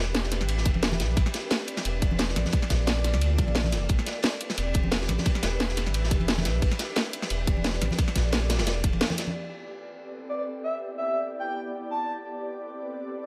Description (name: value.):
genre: liquid drum and bass.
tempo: 176 BPM.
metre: 4/4.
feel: swing 54% on 16ths.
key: A minor.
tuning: A4 = 441 Hz.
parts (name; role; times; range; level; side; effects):
ethereal airy pad; sustained chords; 0.0-13.3 s; Bb3 to E5; -38 LUFS; equal; ensemble chorus, built-in reverb.
sub bass with octave; bass; 0.0-9.0 s; E1 to D2; -30 LUFS; equal; none.
crunchy breakbeat drum kit; drums; 0.1-9.3 s; ride cymbal, snare drum; -35 LUFS; equal; high-pass filter on cymbals, high-pass filter on snare, high-pass filter on room.
garage drum kit; drums; 0.1-9.3 s; hi-hat, snare drum; -31 LUFS; equal; none.
electronic kick drum; drums; 0.7-8.9 s; none; -28 LUFS; equal; none.
congas; percussion; 0.8-9.3 s; none; -36 LUFS; equal; none.
breathy flute-like synth lead; melody; 10.3-12.1 s; D5 to A5; -33 LUFS; equal; lush chorus, tape echo.
room: light reverb, small room ambience.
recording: none.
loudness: -27 LUFS.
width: mono.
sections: 0.0-9.3 A section; 9.3-13.3 B section.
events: band accent 9.0.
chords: 0.0 Em7; 1.2 Am11; 2.5 Bbmaj7; 3.9 Am11; 5.3 Em7; 6.6 Am11; 8.0 Bbmaj7; 8.7 Em7; 9.3 Am11; 10.7 Em7; 12.1 Am11.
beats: 0.15 0.49 0.83 | 1.17 1.51 1.85 2.19 | 2.53 2.87 3.21 3.56 | 3.90 4.24 4.58 4.92 | 5.26 5.60 5.94 6.28 | 6.62 6.96 7.30 7.65 | 7.99 8.33 8.67 9.01 | 9.35 9.69 10.03 10.37 | 10.71 11.05 11.40 11.74 | 12.08 12.42 12.76 13.10.